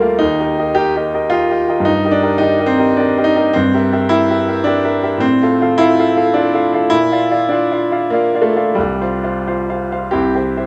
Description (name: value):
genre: classical, romantic character piece for solo piano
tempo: 87-111 BPM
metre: 3/4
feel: rubato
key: unclear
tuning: A4 = 440 Hz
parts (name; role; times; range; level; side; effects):
- bright baby grand piano; solo; 0.0-10.7 s; C2 to F5; -15 LUFS; equal; none
room: moderate recital hall reverb, RT60 1.3 s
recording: dark, warm production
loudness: -15 LUFS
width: mono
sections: 0.0-10.7 A section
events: none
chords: 0.2 Eb; 1.9 Eb/G; 3.5 C7/G; 5.2 F/A; 6.9 Bb; 8.8 Csus4; 10.1 C